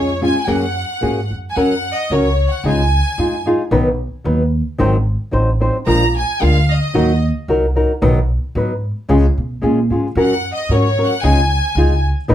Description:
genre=mexican folk, mariachi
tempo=112 BPM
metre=2/4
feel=straight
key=F# major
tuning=A4 = 440 Hz
part: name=clear studio violin section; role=melody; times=0.0-3.4, 5.9-7.2, 10.2-12.0 s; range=C#5 to A#5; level=-20 LUFS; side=equal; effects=none
part: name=flamenco guitar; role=accompaniment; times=0.0-12.3 s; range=G#2 to B#4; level=-16 LUFS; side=left 1 dB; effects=none
part: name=upright bass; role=bass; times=0.0-12.3 s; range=G#1 to B2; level=-17 LUFS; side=equal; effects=none
room=moderate small room reverb, RT60 0.5 s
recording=heard from further back in the room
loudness=-14 LUFS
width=side -11 dB against mid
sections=0.0-1.6 A section; 1.6-12.3 B section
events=none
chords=0.5 F#add9; 1.6 F#; 2.6 C#add9; 3.7 B; 4.8 G#7; 5.9 A#7; 6.9 D#m; 8.0 B; 9.1 C#; 10.2 F#; 11.2 C#add9

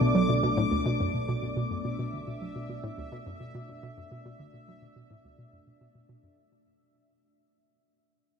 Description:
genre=ambient, sequencer-driven space music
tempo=106 BPM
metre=4/4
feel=straight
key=B minor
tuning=A4 = 439 Hz
part: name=sweeping resonant pad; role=sustained chords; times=0.0-6.4 s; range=B2 to D5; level=-32 LUFS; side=left 1 dB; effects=chorus
part: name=hollow square pluck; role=riff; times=0.0-6.3 s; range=D2 to F#3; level=-30 LUFS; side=right 1 dB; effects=chorus, ping-pong delay
part: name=analog drone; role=bass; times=0.0-6.3 s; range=B1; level=-46 LUFS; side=right 1 dB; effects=chorus
part: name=bubbling stepped-filter texture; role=texture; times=0.0-6.4 s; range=E5 to D6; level=-37 LUFS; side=left 2 dB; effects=chorus, built-in reverb
room=wet huge ambient reverb, RT60 7.8 s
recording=none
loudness=-27 LUFS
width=side -6 dB against mid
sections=0.0-6.4 A section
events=fade-out on synth drone 0.0-6.4; fade-out 0.0-6.4; filter sweep on synth arpeggio sound 0.0-6.4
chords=0.0 Bm7

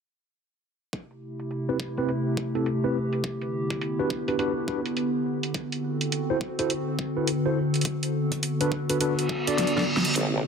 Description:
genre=glitch hop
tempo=104 BPM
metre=4/4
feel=swing 62% on 16ths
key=A dorian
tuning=A4 = 438 Hz
part: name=warbly tape-like pad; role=sustained chords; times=1.3-10.5 s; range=C3 to A4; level=-27 LUFS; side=equal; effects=chorus, built-in reverb, sidechain pumping
part: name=electronic kick drum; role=drums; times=0.9-9.4 s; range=none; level=-34 LUFS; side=equal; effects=overdrive, high-pass filter on kick, high-pass filter on room
part: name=pop drum kit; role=drums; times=0.9-10.3 s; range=hi-hat, snare drum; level=-30 LUFS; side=equal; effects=overdrive, high-pass filter on hats, low-pass filter on hats, high-pass filter on snare, low-pass filter on snare, high-pass filter on room, low-pass filter on room
part: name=mellow tine electric piano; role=stabs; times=1.7-9.8 s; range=C4 to D5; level=-29 LUFS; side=equal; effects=medium stereo tremolo, vintage 12-bit sampler grit, sidechain pumping, low-pass filter, ping-pong delay
part: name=reverse cymbal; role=sound effects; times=9.2-10.2 s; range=none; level=-29 LUFS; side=right 1 dB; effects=none
part: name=formant-sweep wobble bass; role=bass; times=10.2-10.4 s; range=A1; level=-27 LUFS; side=equal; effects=chorus, high-pass filter
room=moderate lush hall reverb, RT60 2.0 s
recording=dense, heavily limited modern master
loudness=-24 LUFS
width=side -6 dB against mid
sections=0.9-10.2 A section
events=reverse cymbal 9.2-10.2; drum fill 9.6-10.2, 10.2-10.5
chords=0.9 Am7; 3.2 Em7; 5.5 D7; 7.9 Bm7

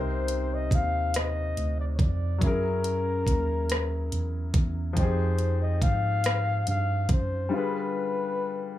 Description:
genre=slow six-eight R&B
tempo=47 BPM (dotted quarters)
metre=6/8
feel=straight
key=C minor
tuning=A4 = 440 Hz
part: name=breathy flugelhorn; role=melody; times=0.0-8.8 s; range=A#4 to F5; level=-31 LUFS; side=left 2 dB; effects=none
part: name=clear baby grand piano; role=accompaniment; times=0.0-8.8 s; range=C3 to C5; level=-32 LUFS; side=left 4 dB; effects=none
part: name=mellow tine electric piano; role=bass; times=0.0-7.5 s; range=C2 to Ab2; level=-28 LUFS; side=right 1 dB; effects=medium stereo tremolo
part: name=smooth R&B drum kit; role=drums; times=0.3-7.3 s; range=hi-hat, kick drum, rim click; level=-26 LUFS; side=equal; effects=none
room=little or no reverb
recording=small room ambience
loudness=-24 LUFS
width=side -13 dB against mid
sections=0.0-8.8 A section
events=break 7.5-8.8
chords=0.0 Cm9; 2.4 F#9; 5.0 Fm9; 7.5 G7b9

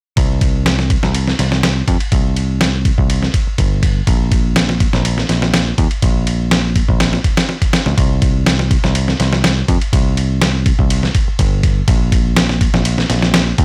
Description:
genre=breakbeat, breaks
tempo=123 BPM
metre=4/4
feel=straight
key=unclear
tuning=A4 = 442 Hz
part: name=picked electric bass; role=bass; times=0.2-13.6 s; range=G1 to F2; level=-19 LUFS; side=equal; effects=none
part: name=dusty soul sampler-style drum kit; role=drums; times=0.2-13.6 s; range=kick drum, ride cymbal, snare drum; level=-17 LUFS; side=equal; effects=small room ambience
room=little or no reverb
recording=dry, gritty hardware recording, transformer saturation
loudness=-15 LUFS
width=mono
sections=0.2-13.6 A section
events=none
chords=none

